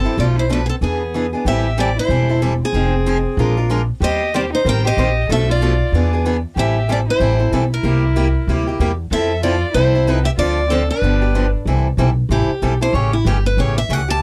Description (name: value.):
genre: acoustic string swing (jazz manouche).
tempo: 188 BPM.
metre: 4/4.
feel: swing 58% on 8ths.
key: unclear.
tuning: A4 = 440 Hz.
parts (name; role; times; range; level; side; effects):
picked steel-string acoustic guitar; melody; 0.0-14.2 s; E4 to A5; -23 LUFS; equal; none.
dark violin; second line; 0.0-11.5 s; B3 to Bb4; -27 LUFS; equal; none.
picked steel-string acoustic guitar; accompaniment; 0.0-14.2 s; B2 to C5; -23 LUFS; equal; none.
upright bass; bass; 0.0-14.2 s; E1 to F2; -20 LUFS; equal; none.
room: light reverb.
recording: dry, close 1970s-style studio recording.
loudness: -17 LUFS.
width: mono.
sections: 0.0-1.5 A section; 1.5-11.7 B section; 11.7-14.2 C section.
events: steel-string acoustic guitar solo 11.7-14.2.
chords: 0.2 Bm7b5; 0.8 E7; 1.5 Am7; 2.7 Fm7; 3.4 Bb7; 4.0 Eb6; 5.3 Bm7b5; 5.9 E7; 6.6 Am7; 7.8 C7; 9.1 Fmaj7; 10.4 Dm7; 11.0 G7; 11.7 C6; 12.9 A7.